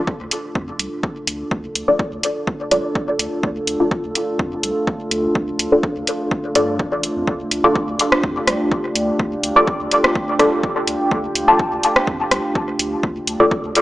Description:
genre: dub techno.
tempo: 125 BPM.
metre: 4/4.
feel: straight.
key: D minor.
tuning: A4 = 440 Hz.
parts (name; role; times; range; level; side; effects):
dark analog pad; sustained chords; 0.4-13.8 s; A3 to A4; -23 LUFS; equal; chorus, phaser, sidechain pumping.
filtered dub chord stab; stabs; 0.0-13.5 s; D4 to D5; -18 LUFS; left 1 dB; phaser, sidechain pumping, dub echo.
electronic kick drum; drums; 0.1-13.6 s; none; -24 LUFS; equal; overdrive, small room ambience.
warm sub bass; bass; 0.2-13.7 s; A1 to G2; -31 LUFS; equal; sidechain pumping.
deep house drum kit; drums; 0.3-13.8 s; hi-hat, rim click; -19 LUFS; equal; overdrive, small room ambience, dub echo.
room: moderate lush hall reverb, RT60 2.0 s.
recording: small speaker sound.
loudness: -16 LUFS.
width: side -16 dB against mid.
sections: 0.0-13.8 A section.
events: filter sweep on synth stab 0.0-13.8.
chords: 0.0 Dm.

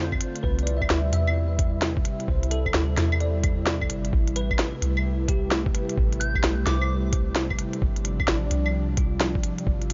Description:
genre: future garage.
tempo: 130 BPM.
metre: 4/4.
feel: swing 64% on 16ths.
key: A minor.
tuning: A4 = 439 Hz.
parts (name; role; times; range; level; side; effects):
bell-like tine electric piano; accompaniment; 0.0-9.9 s; F4 to E5; -37 LUFS; equal; ensemble chorus, sidechain pumping, tape echo.
airy breathy pad; sustained chords; 0.0-9.9 s; C3 to F4; -34 LUFS; equal; chorus, sidechain pumping.
soft 808-style bass; bass; 0.0-9.9 s; G1 to F2; -28 LUFS; equal; none.
electronic kick drum; drums; 0.1-9.8 s; none; -28 LUFS; equal; none.
organic electronic drum kit; drums; 0.1-9.9 s; claves, hi-hat, snare drum; -29 LUFS; equal; none.
soft synth bell; melody; 6.2-7.0 s; D6 to G6; -38 LUFS; equal; chorus, tape echo.
room: little or no reverb.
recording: nothing above 7.4 kHz.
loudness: -25 LUFS.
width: mono.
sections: 0.0-9.9 A section.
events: none.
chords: 0.4 Cmaj7; 4.1 Am7; 7.8 G7sus4.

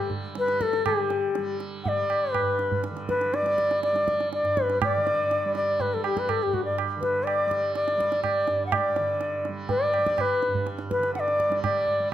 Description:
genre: indian classical, Hindustani.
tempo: 122 BPM.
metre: 4/4.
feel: straight.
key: G raga hamsadhwani.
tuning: A4 = 444 Hz.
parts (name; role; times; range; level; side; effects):
bright reedy bansuri; melody; 0.0-12.1 s; F#4 to F#5; -24 LUFS; left 1 dB; none.
tanpura; drone; 0.0-12.1 s; G2 to G3; -35 LUFS; right 3 dB; none.
tabla; percussion; 0.1-12.1 s; none; -31 LUFS; right 6 dB; none.
room: moderate recital hall reverb, RT60 1.5 s.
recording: none.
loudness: -23 LUFS.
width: side -12 dB against mid.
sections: 0.8-12.1 A section.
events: speeding up 0.0-12.1.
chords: none.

